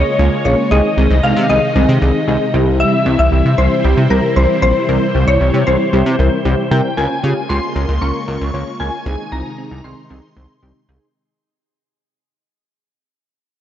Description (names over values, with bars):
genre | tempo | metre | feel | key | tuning
synth-pop | 115 BPM | 4/4 | straight | unclear | A4 = 441 Hz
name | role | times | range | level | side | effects
shimmering bell with halo | melody | 0.0-10.8 s | Bb4 to Db6 | -18 LUFS | left 2 dB | ensemble chorus, slapback echo, shimmer reverb
funky polysynth comp | accompaniment | 0.0-11.1 s | G3 to Db5 | -19 LUFS | equal | chorus, shimmer reverb
string machine, violas | sustained chords | 0.0-11.1 s | C3 to F4 | -21 LUFS | equal | ensemble chorus, shimmer reverb
chorused synth bass | bass | 0.0-11.0 s | Bb1 to Db3 | -15 LUFS | equal | none
room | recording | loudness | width
moderate plate reverb, RT60 2.9 s | dark, warm production, nothing above 8.0 kHz | -12 LUFS | side -10 dB against mid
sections
0.0-7.0 A section; 7.0-11.1 B section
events
fade-out 7.0-11.1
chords
0.0 Db6; 0.7 Ab/C; 2.5 C; 7.0 Db6; 9.1 Ab/C